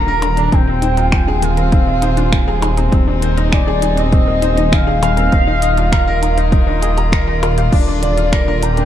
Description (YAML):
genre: piano and strings electronica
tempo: 100 BPM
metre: 4/4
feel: straight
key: Eb major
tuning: A4 = 439 Hz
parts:
  - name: warm velvety synth lead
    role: melody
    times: 0.0-8.8 s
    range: D5 to Bb5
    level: -20 LUFS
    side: left 1 dB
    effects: chorus
  - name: warm string quartet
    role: sustained chords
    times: 0.0-8.8 s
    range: C3 to F4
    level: -27 LUFS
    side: left 1 dB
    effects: none
  - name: bright baby grand piano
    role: riff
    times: 0.0-8.8 s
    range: C4 to Bb5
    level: -20 LUFS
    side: left 1 dB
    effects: ping-pong delay
  - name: dark detuned saw bass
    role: bass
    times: 0.0-8.8 s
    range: Eb1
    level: -17 LUFS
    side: equal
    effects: sidechain pumping
  - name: wide unison pluck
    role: arpeggios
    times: 0.1-8.8 s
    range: D3 to Bb4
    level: -26 LUFS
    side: left 2 dB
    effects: sidechain pumping, ping-pong delay
  - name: minimal click drum kit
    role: drums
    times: 0.2-8.8 s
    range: crash cymbal, finger snaps, hi-hat, percussion blips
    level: -24 LUFS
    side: left 1 dB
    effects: none
  - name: electronic kick drum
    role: drums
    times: 0.5-8.4 s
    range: none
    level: -15 LUFS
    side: equal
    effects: overdrive
room: light reverb, digital ambience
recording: dark, warm production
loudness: -12 LUFS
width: side -11 dB against mid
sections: 0.0-8.8 A section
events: none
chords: 0.0 Bb/Eb; 0.5 Fm/Eb; 2.9 Ab/Eb; 5.3 Ebsus2; 7.7 Bb/Eb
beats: | 0.53 1.13 1.73 2.33 | 2.93 3.53 4.13 4.73 | 5.33 5.93 6.53 7.13 | 7.73 8.33